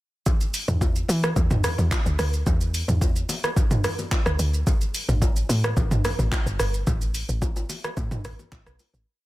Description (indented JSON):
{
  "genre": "amapiano",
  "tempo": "109 BPM",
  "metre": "4/4",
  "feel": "straight",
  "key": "unclear",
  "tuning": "A4 = 440 Hz",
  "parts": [
    { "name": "deep house drum kit", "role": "drums", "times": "0.3-9.1 s", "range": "handclaps, hi-hat, kick drum, rim click, shaker, toms", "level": "-23 LUFS", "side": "equal", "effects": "overdrive" },
    { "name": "congas and bongos", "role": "percussion", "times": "0.3-8.9 s", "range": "none", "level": "-34 LUFS", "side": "left 3 dB", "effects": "none" },
    { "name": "woody log drum bass", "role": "bass", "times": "0.7-9.1 s", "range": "G1 to E3", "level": "-24 LUFS", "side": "equal", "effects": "none" }
  ],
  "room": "little or no reverb",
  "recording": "dense, heavily limited modern master",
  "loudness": "-21 LUFS",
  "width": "side -17 dB against mid",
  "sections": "0.3-9.1 drop",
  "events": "drop 0.3-9.1; fade-out 6.9-9.1",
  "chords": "none",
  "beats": "| 0.26 0.81 1.36 1.92 | 2.46 3.02 3.57 4.12 | 4.67 5.22 5.77 6.32 | 6.87 7.42 7.97 8.52"
}